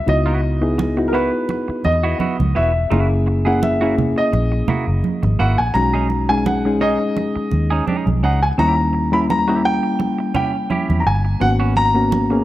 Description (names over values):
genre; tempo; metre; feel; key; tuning
lush 1970s-style soul; 85 BPM; 4/4; swing 54% on 16ths; unclear; A4 = 440 Hz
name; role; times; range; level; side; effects
warm grand piano; melody; 0.0-12.4 s; A#4 to B5; -21 LUFS; equal; slapback echo
reed electric piano; accompaniment; 0.0-12.4 s; G3 to G#4; -21 LUFS; left 2 dB; none
clean electric guitar; riff; 0.1-12.3 s; A#3 to A#4; -26 LUFS; right 4 dB; vibrato effect
vintage muted fingered electric bass; bass; 0.1-12.4 s; E1 to E2; -19 LUFS; equal; none
congas; percussion; 0.1-12.3 s; none; -24 LUFS; right 4 dB; none
room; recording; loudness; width
light reverb, small room reverb; none; -15 LUFS; side -15 dB against mid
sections
0.0-12.4 A section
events
none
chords
0.1 C#m11; 2.9 F#7; 5.8 B69; 8.6 D#7b9; 11.4 G#m11